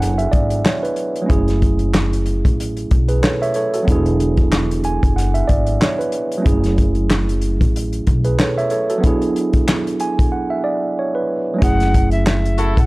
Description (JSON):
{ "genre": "hip hop, boom-bap hip-hop", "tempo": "93 BPM", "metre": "4/4", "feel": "swing 57% on 16ths", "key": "F# minor", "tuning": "A4 = 440 Hz", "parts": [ { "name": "tine electric piano", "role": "accompaniment", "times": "0.0-12.9 s", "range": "F#3 to G#5", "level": "-19 LUFS", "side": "right 2 dB", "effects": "cassette tape, high-pass filter, low-pass filter" }, { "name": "upright bass", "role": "bass", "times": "0.0-12.9 s", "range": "E1 to B1", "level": "-19 LUFS", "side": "equal", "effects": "transformer saturation" }, { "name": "warm soul drum kit", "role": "drums", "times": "0.0-12.9 s", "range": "handclaps, hi-hat, kick drum, snare drum", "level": "-17 LUFS", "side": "equal", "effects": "none" }, { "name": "breathy silver concert flute", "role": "melody", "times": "11.6-12.9 s", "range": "E5 to F#5", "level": "-23 LUFS", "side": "left 1 dB", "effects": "high-pass filter, low-pass filter" }, { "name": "clear horn section", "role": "stabs", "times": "12.6-12.8 s", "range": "E4 to A4", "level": "-22 LUFS", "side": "left 1 dB", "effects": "high-pass filter, low-pass filter" } ], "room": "little or no reverb", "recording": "dry, gritty hardware recording", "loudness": "-15 LUFS", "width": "side -21 dB against mid", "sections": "0.0-11.6 A section; 11.6-12.9 B section", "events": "break 10.3-11.6", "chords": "0.0 E7; 1.3 F#m7; 3.9 E7; 6.5 F#m7; 9.0 E7; 11.6 F#m7" }